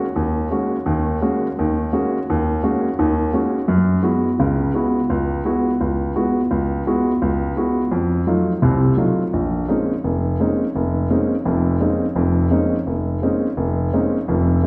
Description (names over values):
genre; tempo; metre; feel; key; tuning
jazz; 170 BPM; 4/4; swing 65% on 8ths; G# minor, Bb minor from 9.3 s; A4 = 440 Hz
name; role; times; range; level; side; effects
warm baby grand piano; solo; 0.0-14.7 s; F1 to F#4; -19 LUFS; equal; none
room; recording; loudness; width
wet recital hall reverb, RT60 1.5 s; recorded in a church or concert hall; -20 LUFS; mono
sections
0.0-9.3 A section; 9.3-14.7 B section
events
none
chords
0.0 G#9sus4; 3.7 F#9sus4; 7.9 F7b9; 9.3 Bbm11